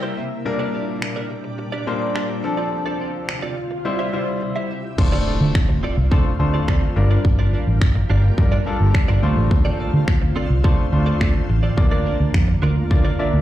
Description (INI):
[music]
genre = dance-pop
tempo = 106 BPM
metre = 4/4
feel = straight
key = unclear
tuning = A4 = 440 Hz
[part]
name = clear grand piano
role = accompaniment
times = 0.0-13.4 s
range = Bb2 to G5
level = -25 LUFS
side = left 3 dB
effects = none
[part]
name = shimmering ambient pad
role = sustained chords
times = 0.0-13.4 s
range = D2 to F4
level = -28 LUFS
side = right 1 dB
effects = chorus, built-in reverb, sidechain pumping
[part]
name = direct-recorded clean electric guitar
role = riff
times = 0.0-13.4 s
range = Bb3 to E5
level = -30 LUFS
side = right 5 dB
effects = analog chorus
[part]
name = swell and impact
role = sound effects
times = 3.2-7.2 s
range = none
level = -30 LUFS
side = equal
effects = none
[part]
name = pop drum kit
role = drums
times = 1.0-13.0 s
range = crash cymbal, finger snaps, kick drum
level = -19 LUFS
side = equal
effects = none
[part]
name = vintage muted fingered electric bass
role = bass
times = 5.0-13.4 s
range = G1 to D3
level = -18 LUFS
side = equal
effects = sidechain pumping
[sound]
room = little or no reverb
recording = played on a big sound system in a bare room, large studio reverb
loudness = -17 LUFS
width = side -13 dB against mid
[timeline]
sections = 0.0-5.0 A section; 5.0-13.4 B section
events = grand piano fill 0.0-0.5, 12.9-13.4; swell 3.2-5.0; break 4.4-5.0; impact 5.0-7.2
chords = 0.5 Gm/Bb; 2.4 Dm7; 3.9 C; 5.0 Dm7; 7.0 Gm7; 9.2 Dm7; 11.8 Bb/D